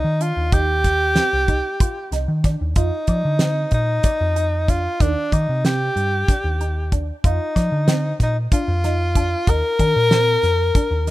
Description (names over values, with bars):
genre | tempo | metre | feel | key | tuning
progressive instrumental, band music in an uneven meter | 188 BPM (eighths) | 7/8 | straight | unclear | A4 = 440 Hz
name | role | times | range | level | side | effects
bright tenor saxophone | melody | 0.0-11.1 s | D4 to Bb4 | -21 LUFS | left 1 dB | none
resonant blip pluck | arpeggios | 0.0-11.1 s | Eb3 to D5 | -31 LUFS | right 2 dB | phaser
hollow-body short-scale picked electric bass | bass | 0.0-11.1 s | C2 to F3 | -21 LUFS | equal | none
damped 70s drum kit | drums | 0.2-11.1 s | hi-hat, kick drum, snare drum | -19 LUFS | equal | none
room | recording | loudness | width
small room ambience | rough home demo mix | -17 LUFS | side -16 dB against mid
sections
0.0-2.8 A section; 2.8-11.1 B section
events
none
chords
0.0 Eb6; 2.8 F5; 5.0 Eb; 7.2 F5; 9.5 Cm7/Eb